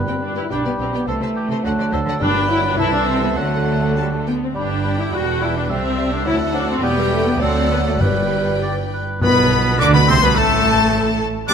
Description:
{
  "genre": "quick classical-period movement for symphony orchestra",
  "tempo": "98-107 BPM",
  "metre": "2/4",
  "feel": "rubato",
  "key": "G major",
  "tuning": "A4 = 440 Hz",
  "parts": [
    { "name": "mellow hollow concert flute", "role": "second line", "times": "0.0-11.5 s", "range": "B4 to D6", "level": "-27 LUFS", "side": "left 2 dB", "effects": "none" },
    { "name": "warm cor anglais", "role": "second line", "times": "0.0-11.5 s", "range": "A3 to D5", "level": "-26 LUFS", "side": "right 2 dB", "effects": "none" },
    { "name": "dark bassoon", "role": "accompaniment", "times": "0.0-8.9 s", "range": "E3 to G3", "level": "-27 LUFS", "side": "right 1 dB", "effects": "none" },
    { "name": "mellow French horn section", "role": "sustained chords", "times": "0.0-11.5 s", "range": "G3 to G4", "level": "-25 LUFS", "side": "left 4 dB", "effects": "none" },
    { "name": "timpani", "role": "percussion", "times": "0.0-2.7, 8.0-9.8 s", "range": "G2", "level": "-26 LUFS", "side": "left 2 dB", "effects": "none" },
    { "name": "rich chamber violin section", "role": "melody", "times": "0.1-11.5 s", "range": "B4 to D6", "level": "-24 LUFS", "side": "left 5 dB", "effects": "none" },
    { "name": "clear studio violin section", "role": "second line", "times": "0.1-11.5 s", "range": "F#4 to E5", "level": "-30 LUFS", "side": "left 1 dB", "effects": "none" },
    { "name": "rich studio viola section", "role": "accompaniment", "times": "0.1-11.5 s", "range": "G3 to G4", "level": "-23 LUFS", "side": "equal", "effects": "none" },
    { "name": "rich chamber cello section", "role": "bass", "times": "0.1-11.5 s", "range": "C2 to D3", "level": "-25 LUFS", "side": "right 3 dB", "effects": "none" },
    { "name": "warm chamber double bass section", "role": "bass", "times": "0.5-11.5 s", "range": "E1 to D2", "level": "-23 LUFS", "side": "right 3 dB", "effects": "none" },
    { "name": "warm trumpet", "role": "stabs", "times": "9.2-11.5 s", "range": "A4 to D5", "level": "-24 LUFS", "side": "right 1 dB", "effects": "none" }
  ],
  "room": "moderate concert hall reverb, RT60 2.2 s",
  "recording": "none",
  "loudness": "-15 LUFS",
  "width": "side -7 dB against mid",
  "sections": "0.0-9.2 A section; 9.2-11.5 A section",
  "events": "none",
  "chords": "0.0 G; 0.5 G/B; 1.1 Am/C; 1.7 D7; 2.2 G; 2.8 Am/C; 3.4 D; 4.6 G; 5.1 Em; 5.7 C; 6.3 D7; 6.8 Em; 7.4 D7; 8.0 G; 9.2 N.C.; 9.8 Bm; 10.4 N.C.",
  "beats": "0.51 | 1.08 1.65 | 2.22 2.79 | 3.37 3.97 | 4.56 5.14 | 5.70 6.27 | 6.83 7.41 | 8.01 8.62 | 9.22 9.80 | 10.36 10.93 | 11.49"
}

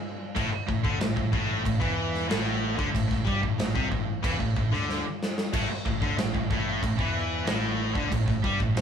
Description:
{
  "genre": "hard rock",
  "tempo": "93 BPM",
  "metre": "4/4",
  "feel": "straight",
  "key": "unclear",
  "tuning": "A4 = 440 Hz",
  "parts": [
    { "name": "distorted electric guitar", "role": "riff", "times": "0.4-8.8 s", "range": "A2 to G3", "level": "-30 LUFS", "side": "left 5 dB", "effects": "overdrive" },
    { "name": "scooped high-gain guitar", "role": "riff", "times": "0.4-8.8 s", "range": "A2 to G3", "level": "-30 LUFS", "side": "right 7 dB", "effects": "distortion" },
    { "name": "picked electric bass", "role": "bass", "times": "0.4-8.8 s", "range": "A1 to G2", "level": "-34 LUFS", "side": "equal", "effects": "none" },
    { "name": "big rock drum kit", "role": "drums", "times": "0.4-8.8 s", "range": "crash cymbal, kick drum, snare drum", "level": "-29 LUFS", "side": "equal", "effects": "none" }
  ],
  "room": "moderate studio ambience, RT60 0.5 s",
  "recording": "band playing live in one room",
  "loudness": "-24 LUFS",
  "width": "side -8 dB against mid",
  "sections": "0.0-8.8 A section",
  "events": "drum fill 4.9-5.5",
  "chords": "0.0 A5",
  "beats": "| 0.35 1.00 1.65 2.29 | 2.94 3.59 4.24 4.88 | 5.53 6.17 6.82 7.46 | 8.11 8.76"
}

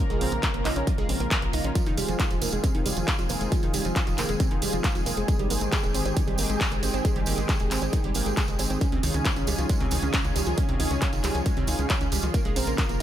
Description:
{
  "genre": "uplifting trance",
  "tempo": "136 BPM",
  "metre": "4/4",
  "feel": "straight",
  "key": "F minor",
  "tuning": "A4 = 440 Hz",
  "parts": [
    { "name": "analog string pad", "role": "sustained chords", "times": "0.0-13.0 s", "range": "Db3 to Bb4", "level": "-31 LUFS", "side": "left 1 dB", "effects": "ensemble chorus, sidechain pumping" },
    { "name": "analog pluck", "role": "arpeggios", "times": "0.0-13.0 s", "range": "Ab2 to Bb4", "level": "-31 LUFS", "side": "right 4 dB", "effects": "chorus, vintage 12-bit sampler grit, sidechain pumping, digital delay" },
    { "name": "tight sequencer bass", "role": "bass", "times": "0.1-13.0 s", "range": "Eb1 to Db2", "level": "-30 LUFS", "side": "equal", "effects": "sidechain pumping" },
    { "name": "punchy analog drum machine", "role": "drums", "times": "0.1-13.0 s", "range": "handclaps, hi-hat", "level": "-31 LUFS", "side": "equal", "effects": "sidechain pumping on hats" },
    { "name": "electronic kick drum", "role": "drums", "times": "0.4-12.9 s", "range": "none", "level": "-26 LUFS", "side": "equal", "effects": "none" },
    { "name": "tambourine", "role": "percussion", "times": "1.8-13.0 s", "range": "none", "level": "-37 LUFS", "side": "right 5 dB", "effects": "none" }
  ],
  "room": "little or no reverb",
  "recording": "none",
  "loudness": "-23 LUFS",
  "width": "side -11 dB against mid",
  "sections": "0.0-13.0 A section",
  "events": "none",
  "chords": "0.0 Bbm; 1.8 Fm7; 5.3 Abmaj7; 8.8 Dbadd9; 12.3 Bbm",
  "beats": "0.43 0.87 1.31 | 1.75 2.20 2.64 3.08 | 3.52 3.96 4.40 4.84 | 5.28 5.72 6.17 6.61 | 7.05 7.49 7.93 8.37 | 8.81 9.25 9.70 10.14 | 10.58 11.02 11.46 11.90 | 12.34 12.78"
}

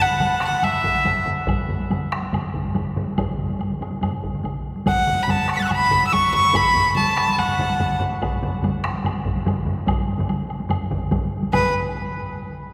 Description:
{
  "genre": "japanese traditional, taiko drum ensemble",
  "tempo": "143 BPM",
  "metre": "4/4",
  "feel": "straight",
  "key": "B suspended pentatonic",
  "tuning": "A4 = 439 Hz",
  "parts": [
    { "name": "rich violin", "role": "melody", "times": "0.0-1.3, 4.9-8.0, 11.5-11.7 s", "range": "B4 to C#7", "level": "-22 LUFS", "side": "equal", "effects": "none" },
    { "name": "taiko ensemble", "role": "percussion", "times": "0.1-11.7 s", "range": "none", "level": "-30 LUFS", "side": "equal", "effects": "none" },
    { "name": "solo taiko drums", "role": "percussion", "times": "0.2-11.9 s", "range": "none", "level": "-32 LUFS", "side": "equal", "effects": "none" },
    { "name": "taiko ensemble", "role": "percussion", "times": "0.2-11.9 s", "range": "none", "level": "-30 LUFS", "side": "equal", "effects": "none" },
    { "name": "woodblock", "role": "percussion", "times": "0.2-11.7 s", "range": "none", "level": "-36 LUFS", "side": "equal", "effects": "none" },
    { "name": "taiko ensemble", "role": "percussion", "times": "0.8-11.7 s", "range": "none", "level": "-34 LUFS", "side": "equal", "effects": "none" }
  ],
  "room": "wet cathedral reverb, RT60 4.7 s",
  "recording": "recorded in a church or concert hall",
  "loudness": "-21 LUFS",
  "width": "mono",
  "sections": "0.0-11.5 A section; 11.5-12.7 B section",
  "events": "speeding up 0.0-12.7",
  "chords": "none",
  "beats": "0.20 0.63 1.05 | 1.48 1.90 2.33 2.75 | 3.17 3.60 4.02 4.44 | 4.86 5.28 5.70 6.12 | 6.54 6.96 7.38 7.80 | 8.21 8.63 9.05 9.46 | 9.88 10.29 10.70 11.12 | 11.53"
}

